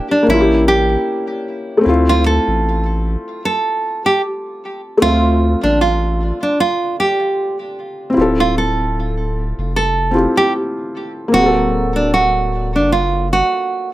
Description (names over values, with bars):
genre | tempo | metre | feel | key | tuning
lo-fi hip hop | 76 BPM | 4/4 | swing 56% on 16ths | D minor | A4 = 440 Hz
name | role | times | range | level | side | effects
nylon-string guitar | melody | 0.0-13.9 s | D4 to A4 | -16 LUFS | right 2 dB | tape echo
felt-muted upright piano | accompaniment | 0.0-13.9 s | F#3 to E5 | -18 LUFS | left 2 dB | cassette tape
saturated sub bass | bass | 0.3-13.4 s | D1 to D2 | -19 LUFS | equal | none
room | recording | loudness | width
light reverb | none | -13 LUFS | side -15 dB against mid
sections
0.0-8.2 A section; 8.2-13.9 B section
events
none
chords
0.3 A7b9; 1.9 Dm9; 11.3 D7b13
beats
0.27 1.06 | 1.85 2.64 3.43 4.22 | 5.01 5.80 6.59 7.38 | 8.17 8.96 9.74 10.54 | 11.32 12.11 12.90 13.69